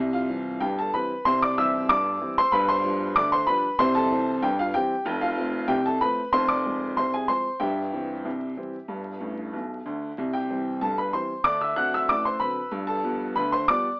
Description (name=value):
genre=ragtime piano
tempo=94 BPM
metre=2/4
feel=straight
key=C major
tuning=A4 = 438 Hz
part: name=warm upright piano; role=solo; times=0.0-14.0 s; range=F1 to F#6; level=-22 LUFS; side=equal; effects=none
room=light reverb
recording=vinyl crackle, AM radio sound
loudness=-22 LUFS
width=side -24 dB against mid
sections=0.0-14.0 A section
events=upright piano fill 9.2-10.2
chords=0.0 C; 2.5 G7; 3.8 C; 5.1 F; 6.3 Fm; 7.6 C/G; 8.9 G; 10.2 C; 11.5 D7; 12.7 G7